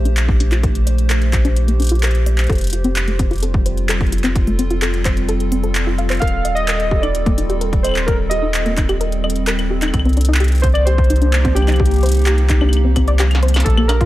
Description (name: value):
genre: IDM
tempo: 129 BPM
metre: 4/4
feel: straight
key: C dorian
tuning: A4 = 440 Hz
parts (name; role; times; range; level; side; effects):
- warbly tape-like pad; sustained chords; 0.0-14.1 s; F3 to C5; -25 LUFS; equal; chorus, built-in reverb, phaser
- warm sub bass; bass; 0.0-14.1 s; Eb1 to C2; -16 LUFS; equal; tube saturation
- soft round pluck; arpeggios; 0.1-14.1 s; A3 to F5; -23 LUFS; left 2 dB; chorus, analog delay
- industrial drum kit; drums; 0.1-14.1 s; claves, handclaps, hi-hat, snare drum, struck metal; -23 LUFS; equal; none
- electronic kick drum; drums; 0.3-14.1 s; none; -19 LUFS; equal; none
- warbly lo-fi synth keys; melody; 6.2-14.1 s; G4 to F5; -22 LUFS; right 1 dB; chorus, analog delay
room: little or no reverb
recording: dry, gritty hardware recording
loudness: -14 LUFS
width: side -16 dB against mid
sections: 0.0-13.7 A section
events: filter sweep on synth arpeggio sound 0.0-13.7; drum fill 13.2-13.7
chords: 0.0 Bb; 2.5 F; 6.2 Eb; 9.9 Cmadd9